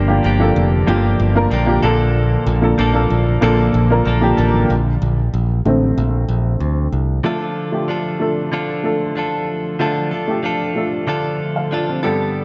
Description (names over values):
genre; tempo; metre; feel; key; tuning
pop; 94 BPM; 4/4; straight; D minor; A4 = 440 Hz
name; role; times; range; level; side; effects
dark upright piano; accompaniment; 0.0-12.4 s; G2 to F5; -22 LUFS; equal; none
direct-recorded clean electric guitar; riff; 0.0-12.4 s; G2 to A4; -22 LUFS; equal; spring reverb
modern bright picked electric bass; bass; 0.0-7.2 s; F1 to D2; -19 LUFS; equal; none
room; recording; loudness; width
light reverb, small room reverb; nothing above 7.8 kHz; -17 LUFS; mono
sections
0.0-4.7 A section; 4.7-7.2 B section; 7.2-12.4 C section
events
upright piano solo 4.7-7.2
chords
0.0 Gm7; 1.8 Bbmaj7; 7.2 Dm